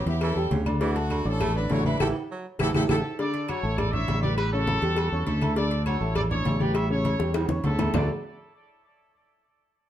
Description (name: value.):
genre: latin, salsa.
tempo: 202 BPM.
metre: 4/4.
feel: straight.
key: D major.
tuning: A4 = 440 Hz.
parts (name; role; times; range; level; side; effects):
brilliant horn section; melody; 0.0-3.0 s; A3 to C#5; -31 LUFS; equal; none.
clear baritone saxophone; second line; 0.0-3.1 s; C#3 to A3; -35 LUFS; right 4 dB; none.
warm upright piano; accompaniment; 0.1-8.1 s; C#3 to D6; -30 LUFS; left 1 dB; none.
fingered electric bass; bass; 0.1-8.1 s; A1 to E2; -27 LUFS; equal; none.
congas; percussion; 0.1-8.0 s; none; -31 LUFS; left 1 dB; none.
cowbell and bongos; percussion; 0.1-8.0 s; none; -33 LUFS; left 3 dB; none.
agogo bells and timbales; percussion; 0.2-8.0 s; none; -34 LUFS; right 5 dB; none.
claves; percussion; 0.2-8.0 s; none; -42 LUFS; left 6 dB; none.
bright trumpet section; melody; 2.9-8.1 s; E4 to E5; -31 LUFS; equal; tape echo.
room: moderate studio reverb, RT60 0.8 s.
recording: dark, warm production.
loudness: -23 LUFS.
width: side -11 dB against mid.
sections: 0.0-3.2 A section; 3.2-7.9 B section; 7.9-9.1 C section.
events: band accent 2.0-3.2; drum fill 2.6-3.2, 7.2-7.9.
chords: 0.0 A7; 0.8 D; 2.0 A7(no3); 3.2 D; 4.4 A7; 5.6 D; 6.8 A7; 7.9 D5.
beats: 0.21 0.51 | 0.81 1.11 1.40 1.70 | 2.00 2.30 2.59 2.89 | 3.19 3.49 3.78 4.08 | 4.38 4.67 4.97 5.27 | 5.57 5.86 6.16 6.46 | 6.75 7.05 7.35 7.64 | 7.94.